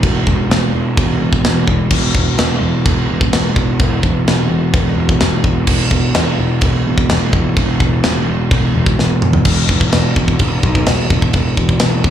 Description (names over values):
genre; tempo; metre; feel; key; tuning
heavy metal; 127 BPM; 4/4; straight; unclear; A4 = 440 Hz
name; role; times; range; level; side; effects
fuzz picked electric bass; bass; 0.0-12.1 s; E1 to B1; -14 LUFS; equal; overdrive
tight metal drum kit; drums; 0.0-12.1 s; china cymbal, crash cymbal, kick drum, snare drum, toms; -15 LUFS; equal; none
room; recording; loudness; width
little or no reverb; live gig heard through the venue's PA, club reverb; -12 LUFS; side -10 dB against mid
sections
0.0-9.5 A section; 9.5-12.1 B section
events
drum fill 9.0-9.5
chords
none